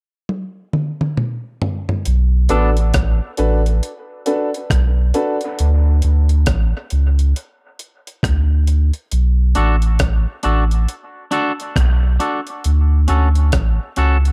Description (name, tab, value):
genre	dub reggae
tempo	68 BPM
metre	4/4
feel	swing 62% on 16ths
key	B minor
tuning	A4 = 440 Hz
part	breakbeat sampler-style drum kit	drums	0.3-14.3 s	hi-hat, kick drum, rim click, toms	-22 LUFS	equal	none
part	warm sub bass	bass	2.1-14.3 s	A1 to D2	-16 LUFS	equal	none
part	twangy electric guitar	accompaniment	2.5-2.7, 9.6-14.2 s	B3 to A4	-24 LUFS	equal	dub echo
part	clear upright piano	stabs	2.5-5.4 s	D4 to B4	-24 LUFS	equal	dub echo
room	digital ambience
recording	echo-heavy mix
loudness	-17 LUFS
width	mono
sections	0.0-2.1 A section; 2.1-14.3 B section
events	drum fill 0.3-2.1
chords	0.0 N.C.; 2.1 Bm7; 5.6 D5; 9.1 Bm7; 12.6 Dmaj7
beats	0.29 1.18 | 2.06 2.94 3.82 4.71 | 5.59 6.47 7.35 8.23 | 9.12 10.00 10.88 11.76 | 12.64 13.53